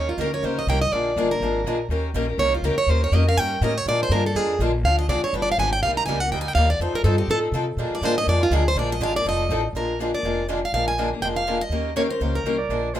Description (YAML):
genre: acoustic string swing (jazz manouche)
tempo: 245 BPM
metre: 4/4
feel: swing 57% on 8ths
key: Bb mixolydian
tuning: A4 = 438 Hz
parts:
  - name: picked plugged-in steel-string acoustic guitar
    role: melody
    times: 0.0-12.8 s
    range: F4 to Bb5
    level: -24 LUFS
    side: right 1 dB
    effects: none
  - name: picked steel-string acoustic guitar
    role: accompaniment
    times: 0.0-13.0 s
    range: C3 to Bb4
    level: -26 LUFS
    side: left 4 dB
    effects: none
  - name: picked swing-style acoustic guitar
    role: accompaniment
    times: 0.0-13.0 s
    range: C3 to Bb4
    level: -31 LUFS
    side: right 7 dB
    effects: none
  - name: upright bass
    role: bass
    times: 0.0-13.0 s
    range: F1 to C3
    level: -24 LUFS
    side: equal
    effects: none
  - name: clear clarinet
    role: second line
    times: 12.6-13.0 s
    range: C5 to D5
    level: -28 LUFS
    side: right 5 dB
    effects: none
room: moderate studio ambience, RT60 0.5 s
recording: minimal, uncompressed stereo recording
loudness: -20 LUFS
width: side -12 dB against mid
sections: 0.0-9.7 A section; 9.7-13.0 B section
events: steel-string acoustic guitar solo 0.0-9.7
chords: 0.0 Eb7; 0.9 Bb7; 1.9 Eb7; 3.9 Bb7; 4.8 Dm7b5; 5.3 G7b9; 5.8 Cm7; 6.8 F7; 7.8 Bb7; 9.2 F7; 9.7 Bb7; 11.7 Eb7